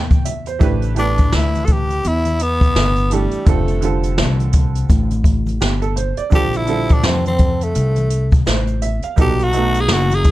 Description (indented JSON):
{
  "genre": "hip hop, jazz-hop",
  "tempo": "84 BPM",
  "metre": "4/4",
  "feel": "swing 61% on 16ths",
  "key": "A minor",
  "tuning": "A4 = 438 Hz",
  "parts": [
    { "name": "clear upright piano", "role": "accompaniment", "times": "0.0-10.3 s", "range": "D3 to G5", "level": "-23 LUFS", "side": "right 7 dB", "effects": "none" },
    { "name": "upright bass", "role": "bass", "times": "0.0-10.3 s", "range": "F1 to F2", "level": "-19 LUFS", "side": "equal", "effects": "none" },
    { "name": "jazz brush drum kit", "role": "drums", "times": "0.1-10.3 s", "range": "hi-hat, kick drum, snare drum", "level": "-16 LUFS", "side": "equal", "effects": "vintage 12-bit sampler grit" },
    { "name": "egg shaker and congas", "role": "percussion", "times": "0.1-10.3 s", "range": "none", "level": "-33 LUFS", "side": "left 4 dB", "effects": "none" },
    { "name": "growling tenor saxophone", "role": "melody", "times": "1.0-10.3 s", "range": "G3 to A4", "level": "-20 LUFS", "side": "left 1 dB", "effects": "none" }
  ],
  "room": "light reverb",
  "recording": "none",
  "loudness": "-14 LUFS",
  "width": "side -16 dB against mid",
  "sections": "0.6-10.3 A section",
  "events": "tenor saxophone solo 0.6-10.3",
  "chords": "0.0 Am7 (rootless); 0.6 A9sus4; 3.5 F69; 6.3 Bb69; 9.2 B7b13"
}